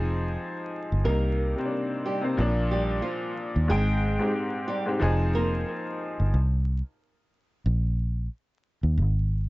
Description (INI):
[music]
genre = hip hop, boom-bap hip-hop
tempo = 91 BPM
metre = 4/4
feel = swing 56% on 16ths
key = unclear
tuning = A4 = 440 Hz
[part]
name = warm upright piano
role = accompaniment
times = 0.0-6.4 s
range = Ab2 to G5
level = -28 LUFS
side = left 1 dB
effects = cassette tape, high-pass filter, low-pass filter, plate reverb
[part]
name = fingered electric bass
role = bass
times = 0.0-9.4 s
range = F1 to Eb2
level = -24 LUFS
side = equal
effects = none
[part]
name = flamenco guitar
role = melody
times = 1.0-5.6 s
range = F3 to Bb4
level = -31 LUFS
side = right 1 dB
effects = high-pass filter, low-pass filter, plate reverb, analog delay
[sound]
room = light reverb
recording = vinyl crackle, nothing above 7.9 kHz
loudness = -24 LUFS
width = side -20 dB against mid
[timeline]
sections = 0.0-1.1 A section; 1.1-9.5 B section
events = none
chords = 0.0 Fm7; 1.1 Cm7; 2.4 Bb; 3.7 Abmaj7; 5.0 Fm7; 6.3 N.C.